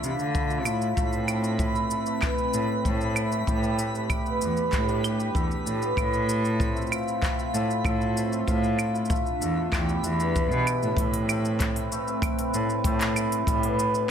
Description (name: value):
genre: folktronica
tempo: 96 BPM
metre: 4/4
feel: straight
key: A minor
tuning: A4 = 441 Hz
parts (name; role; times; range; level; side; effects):
- warbly tape-like pad; sustained chords; 0.0-14.1 s; E3 to B4; -33 LUFS; right 1 dB; chorus, built-in reverb, phaser
- cimbalom; arpeggios; 0.0-14.1 s; G3 to F5; -29 LUFS; equal; digital delay
- rich cello; bass; 0.0-14.0 s; E2 to D3; -28 LUFS; equal; none
- minimal click drum kit; drums; 0.0-14.1 s; cabasa, claves, handclaps, hi-hat; -32 LUFS; right 2 dB; small room ambience
- twinkling granular texture; texture; 0.0-11.0 s; B5; -39 LUFS; right 1 dB; built-in reverb
- kick drum; drums; 0.3-13.6 s; none; -29 LUFS; equal; small room ambience
room: studio reverb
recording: none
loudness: -23 LUFS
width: side -8 dB against mid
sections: 0.0-11.0 A section; 11.0-14.1 B section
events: none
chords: 0.0 Dm; 1.0 Amadd9; 3.5 Gadd9; 6.0 F/A; 8.5 Dm/A; 9.7 Em7; 11.0 Amadd9; 13.5 Gadd9